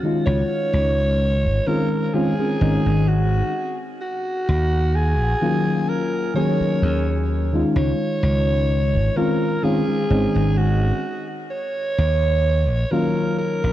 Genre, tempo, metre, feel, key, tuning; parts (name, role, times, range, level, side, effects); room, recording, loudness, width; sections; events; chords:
vaporwave; 64 BPM; 4/4; straight; Db major; A4 = 438 Hz
growling alto saxophone; melody; 0.0-13.7 s; Gb4 to Db5; -24 LUFS; right 1 dB; vintage 12-bit sampler grit, tape echo
mellow FM electric piano; accompaniment; 0.0-13.7 s; Eb3 to Ab4; -21 LUFS; left 1 dB; wide subtle chorus, vintage 12-bit sampler grit, analog delay
slap bass; bass; 0.3-13.7 s; Ab1 to Eb2; -19 LUFS; equal
moderate lush hall reverb, RT60 2.8 s; dreamy mix soaked in reverb, cassette tape; -18 LUFS; side -13 dB against mid
0.0-13.7 A section
0.3 Dbmaj9; 3.5 Ebm9; 7.8 Dbmaj9; 11.0 Ebm9